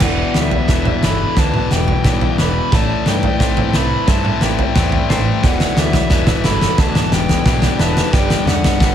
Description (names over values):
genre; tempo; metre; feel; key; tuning
post-rock; 89 BPM; 4/4; straight; E minor; A4 = 440 Hz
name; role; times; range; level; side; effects
dark smooth lead guitar; melody; 0.0-8.9 s; E5 to B5; -23 LUFS; right 2 dB; overdrive, digital delay
warm chamber string section; sustained chords; 0.0-8.9 s; G3 to B4; -32 LUFS; right 3 dB; none
twangy electric guitar; arpeggios; 0.0-8.9 s; A2 to C5; -28 LUFS; equal; none
vibraphone with medium mallets; arpeggios; 0.0-8.9 s; A4 to D5; -28 LUFS; right 4 dB; digital delay
cranked stack guitar; riff; 0.0-8.9 s; E2 to A3; -20 LUFS; left 9 dB; overdrive
growling picked electric bass; bass; 0.0-8.9 s; E1 to G2; -21 LUFS; right 1 dB; overdrive
loose indie drum kit; drums; 0.0-8.9 s; crash cymbal, kick drum, snare drum, toms; -16 LUFS; right 1 dB; none
room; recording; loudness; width
light reverb, studio reverb; none; -13 LUFS; side -9 dB against mid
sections
0.0-8.9 A section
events
build-up 0.0-8.9; drum fill 0.0-8.9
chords
0.0 Em7; 2.7 Am7; 5.4 Em7; 8.1 Gmaj7